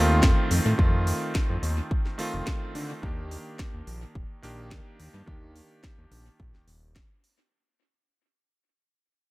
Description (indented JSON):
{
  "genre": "nu-disco, nu disco",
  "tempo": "107 BPM",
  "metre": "4/4",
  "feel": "straight",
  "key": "unclear",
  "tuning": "A4 = 441 Hz",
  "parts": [
    { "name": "clear electric grand piano", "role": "accompaniment", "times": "0.0-6.6 s", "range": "Eb3 to G4", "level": "-29 LUFS", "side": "right 1 dB", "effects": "sidechain pumping, tape echo" },
    { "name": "fat analog bass", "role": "bass", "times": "0.0-7.0 s", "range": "Eb1 to D3", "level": "-26 LUFS", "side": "equal", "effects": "none" },
    { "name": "electronic kick drum", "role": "drums", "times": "0.2-7.1 s", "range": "none", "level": "-26 LUFS", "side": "equal", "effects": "none" },
    { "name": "house drum kit", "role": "drums", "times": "0.2-7.4 s", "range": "hi-hat, snare drum", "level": "-33 LUFS", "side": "equal", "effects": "tape echo" }
  ],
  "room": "light reverb, digital ambience",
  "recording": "echo-heavy mix",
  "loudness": "-23 LUFS",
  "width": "side -20 dB against mid",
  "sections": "0.0-7.5 A section",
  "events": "fade-out 0.0-7.5",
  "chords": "0.0 F7; 3.0 Ebmaj7"
}